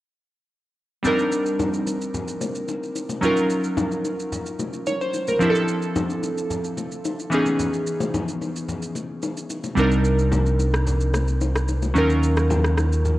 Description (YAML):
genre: amapiano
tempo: 110 BPM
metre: 4/4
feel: straight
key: unclear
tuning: A4 = 440 Hz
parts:
  - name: glassy digital keys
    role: accompaniment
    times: 1.0-13.2 s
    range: Fb3 to Db5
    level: -23 LUFS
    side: right 1 dB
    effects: chorus
  - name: electronic shaker and rim click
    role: drums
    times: 1.0-13.2 s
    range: none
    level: -32 LUFS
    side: equal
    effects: overdrive
  - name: congas and bongos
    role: percussion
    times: 1.0-13.2 s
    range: none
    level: -29 LUFS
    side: left 3 dB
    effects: none
  - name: picked electric bass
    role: bass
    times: 9.8-13.2 s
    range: C2 to Eb2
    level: -20 LUFS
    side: equal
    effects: none
room: light reverb, digital ambience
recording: worn, warbling old tape, cassette tape, warbly pitch drift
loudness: -20 LUFS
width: side -16 dB against mid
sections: 1.0-13.2 A section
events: none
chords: 1.0 Cm9; 3.2 Ebm9; 5.4 Dm9; 7.3 Dbm9; 9.8 Cm9; 12.0 Ebm9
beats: | 1.05 1.59 2.14 2.69 | 3.23 3.78 4.32 4.87 | 5.41 5.96 6.50 7.05 | 7.59 8.14 8.69 9.23 | 9.78 10.32 10.87 11.41 | 11.96 12.50 13.05